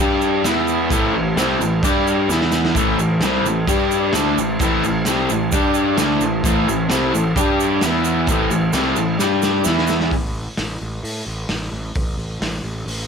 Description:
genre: garage rock duo or trio.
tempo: 130 BPM.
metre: 4/4.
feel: straight.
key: A minor.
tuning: A4 = 440 Hz.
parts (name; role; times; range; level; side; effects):
combo organ; sustained chords; 0.0-10.1 s; D4 to E5; -29 LUFS; right 3 dB; none.
raw garage guitar; riff; 0.0-10.1 s; A2 to G4; -17 LUFS; left 1 dB; overdrive.
fuzz picked electric bass; bass; 0.0-13.1 s; A1 to A2; -26 LUFS; equal; overdrive.
raw garage drum kit; drums; 0.0-13.0 s; crash cymbal, hi-hat, kick drum, snare drum; -23 LUFS; equal; none.
egg shaker; percussion; 0.2-10.0 s; none; -30 LUFS; right 16 dB; none.
room: small room ambience.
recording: none.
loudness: -16 LUFS.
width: side -6 dB against mid.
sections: 0.0-10.1 A section; 10.1-13.1 B section.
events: drum fill 2.3-2.8, 9.2-10.1.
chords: 0.0 G5; 0.5 E5; 0.9 Am; 1.8 G5; 2.3 E5; 2.8 Am; 3.7 G5; 4.1 Am; 5.5 G5; 6.0 Am; 7.4 G5; 7.8 E5; 8.3 Am; 9.2 G5; 9.7 E5; 10.1 N.C..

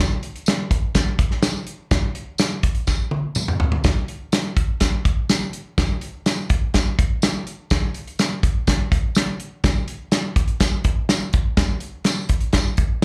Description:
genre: soul.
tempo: 124 BPM.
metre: 4/4.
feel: straight.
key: none.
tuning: none.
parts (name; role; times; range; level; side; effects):
natural country drum kit; drums; 0.2-13.0 s; hi-hat, kick drum, snare drum, toms; -22 LUFS; equal; slapback echo.
tambourine; percussion; 0.5-13.0 s; none; -32 LUFS; equal; none.
room: light reverb.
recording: live gig heard through the venue's PA, club reverb.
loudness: -22 LUFS.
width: mono.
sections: 0.0-3.8 A section; 3.8-13.0 B section.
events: drum fill 2.9-3.8.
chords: none.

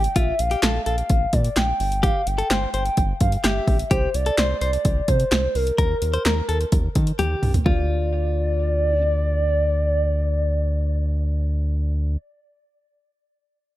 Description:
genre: synth-pop.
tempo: 128 BPM.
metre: 4/4.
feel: straight.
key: D minor.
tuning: A4 = 440 Hz.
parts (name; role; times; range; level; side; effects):
hollow clarinet-like synth lead; melody; 0.0-12.2 s; Bb4 to G5; -25 LUFS; equal; chorus, digital delay.
direct-recorded clean electric guitar; second line; 0.0-9.0 s; F4 to C5; -28 LUFS; left 4 dB; digital delay.
round analog bass; bass; 0.0-12.2 s; G1 to Eb3; -22 LUFS; equal; none.
punchy analog drum machine; drums; 0.0-7.8 s; handclaps, hi-hat, kick drum, snare drum, toms; -22 LUFS; equal; overdrive.
room: little or no reverb.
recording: none.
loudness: -19 LUFS.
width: side -15 dB against mid.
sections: 0.0-7.7 A section; 7.7-11.4 B section.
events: drum fill 7.2-7.7.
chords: 0.2 Bb5; 1.8 G7(no3); 3.9 Csus2; 5.8 Eb5; 7.7 Dm.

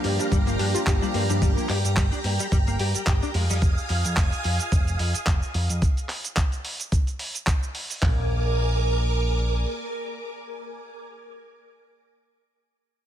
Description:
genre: nu-disco, nu disco.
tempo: 109 BPM.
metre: 4/4.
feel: swing 55% on 16ths.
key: Bb mixolydian.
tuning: A4 = 440 Hz.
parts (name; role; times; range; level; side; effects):
mellow synth brass; accompaniment; 0.0-1.7 s; F3 to G4; -30 LUFS; right 1 dB; chorus, ping-pong delay.
string machine, full ensemble; sustained chords; 0.0-11.0 s; G4 to Eb6; -30 LUFS; right 1 dB; phaser, ensemble chorus, sidechain pumping.
analog pluck; arpeggios; 0.0-1.4 s; G3 to F4; -33 LUFS; left 7 dB; chorus, sidechain pumping, tape echo.
direct-recorded clean electric guitar; riff; 0.0-3.6 s; G3 to G4; -33 LUFS; left 4 dB; ensemble chorus, ping-pong delay.
picked electric bass with an envelope filter; bass; 0.0-9.6 s; F1 to G2; -24 LUFS; equal; tube saturation.
dusty soul sampler-style drum kit; drums; 0.0-8.0 s; cabasa, handclaps, hi-hat; -30 LUFS; right 1 dB; none.
dusty soul sampler-style drum kit; drums; 0.3-8.2 s; handclaps, kick drum, toms; -23 LUFS; equal; none.
room: digital ambience.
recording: none.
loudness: -22 LUFS.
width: side -11 dB against mid.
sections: 0.0-8.0 A section; 8.0-10.2 B section.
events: drop 0.0-8.0.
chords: 0.0 Gm7; 3.3 Fm7; 8.0 Bb7.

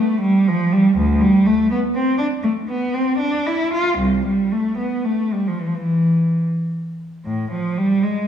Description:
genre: classical, baroque-style suite movement for unaccompanied cello.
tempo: 71-83 BPM (dotted quarters).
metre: 6/8.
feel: rubato.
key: A minor.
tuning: A4 = 440 Hz.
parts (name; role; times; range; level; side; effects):
rich cello; solo; 0.0-8.3 s; C2 to F4; -16 LUFS; equal; none.
room: wet recital hall reverb, RT60 1.7 s.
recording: heard from further back in the room, studio reverb.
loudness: -16 LUFS.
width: side -9 dB against mid.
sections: 0.0-7.3 A section; 7.3-8.3 A section.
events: none.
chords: none.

